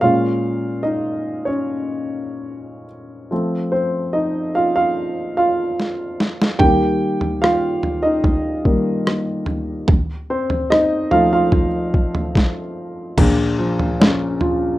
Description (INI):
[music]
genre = pop ballad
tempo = 73 BPM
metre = 4/4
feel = straight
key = Bb minor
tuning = A4 = 441 Hz
[part]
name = warm baby grand piano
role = accompaniment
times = 0.0-14.8 s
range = Bb1 to G5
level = -18 LUFS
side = equal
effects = none
[part]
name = boom bap sampler-style drum kit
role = drums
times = 5.8-14.6 s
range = crash cymbal, kick drum, rim click, snare drum, toms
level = -18 LUFS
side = equal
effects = overdrive
[sound]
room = moderate studio reverb, RT60 0.6 s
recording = rough home demo mix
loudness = -16 LUFS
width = side -16 dB against mid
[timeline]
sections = 0.0-13.2 A section; 13.2-14.8 B section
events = grand piano solo 0.0-13.2; drum fill 5.8-6.6; stop 12.4-13.2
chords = 0.0 Bbm7; 3.3 F; 6.6 Eb; 9.9 F7; 13.2 Bbm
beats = | 0.02 0.85 1.67 2.49 | 3.31 4.13 4.96 5.78 | 6.60 7.42 8.24 9.06 | 9.89 10.71 11.53 12.35 | 13.18 14.00